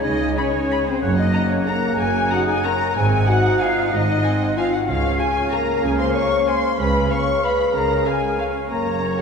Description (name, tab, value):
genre	classical, orchestral ballroom waltz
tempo	187 BPM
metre	3/4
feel	uneven beats, rubato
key	Db major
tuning	A4 = 438 Hz
part	bright flute section	second line	0.0-9.2 s	C5 to Db6	-26 LUFS	left 3 dB	none
part	clear oboe	second line	0.0-9.2 s	Db5 to Ab5	-28 LUFS	equal	none
part	muted symphonic violin section	second line	0.0-9.2 s	C5 to Db6	-28 LUFS	left 1 dB	none
part	dark bassoon	accompaniment	0.0-9.2 s	C3 to Db3	-29 LUFS	right 2 dB	none
part	muted symphonic viola section	accompaniment	0.0-9.2 s	Ab3 to Eb4	-28 LUFS	right 1 dB	none
part	mellow French horn section	sustained chords	0.0-9.2 s	C4 to Db5	-22 LUFS	left 2 dB	none
part	muted symphonic cello section	bass	0.0-9.2 s	Gb2 to Db3	-26 LUFS	right 2 dB	none
part	muted symphonic double bass section	bass	0.1-9.2 s	Gb1 to Db2	-25 LUFS	right 1 dB	none
part	muted studio violin section	melody	0.4-9.2 s	Db5 to Cb6	-33 LUFS	left 3 dB	none
room	wet church reverb, RT60 2.9 s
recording	recorded in a church or concert hall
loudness	-17 LUFS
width	side -6 dB against mid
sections	0.0-9.2 A section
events	none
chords	0.0 Db5; 1.0 Gb; 3.0 Ab7; 4.9 Db; 6.8 Db7; 8.7 Gb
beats	| 0.05 0.37 0.71 | 1.02 1.34 1.68 | 1.99 2.31 2.65 | 2.96 3.27 3.60 | 3.92 4.24 4.57 | 4.88 5.19 5.52 | 5.83 6.15 6.48 | 6.79 7.11 7.43 | 7.74 8.06 8.39 | 8.70 9.02